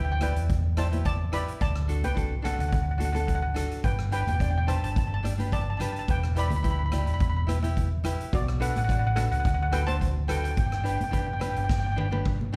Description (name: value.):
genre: calypso.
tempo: 107 BPM.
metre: 4/4.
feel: swing 54% on 16ths.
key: G major.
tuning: A4 = 440 Hz.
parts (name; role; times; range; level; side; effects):
steel pan; melody; 0.0-12.1 s; F#4 to B5; -34 LUFS; equal; slapback echo.
tenor ukulele; accompaniment; 0.0-12.6 s; D4 to D5; -38 LUFS; equal; slapback echo.
hollow-body short-scale fingered electric bass; bass; 0.0-12.6 s; E1 to E2; -30 LUFS; equal; none.
street-band drum kit; drums; 0.2-12.6 s; hi-hat, kick drum, rim click, snare drum, toms; -32 LUFS; equal; none.
congas; percussion; 0.2-12.5 s; none; -41 LUFS; equal; slapback echo.
room: studio ambience.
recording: live gig heard through the venue's PA, club reverb.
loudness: -27 LUFS.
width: mono.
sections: 0.0-12.6 A section.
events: drum fill 11.7-12.6.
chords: 0.0 Em7; 1.6 D; 3.8 G; 8.3 Bm7; 9.4 D7; 10.6 Gmaj7.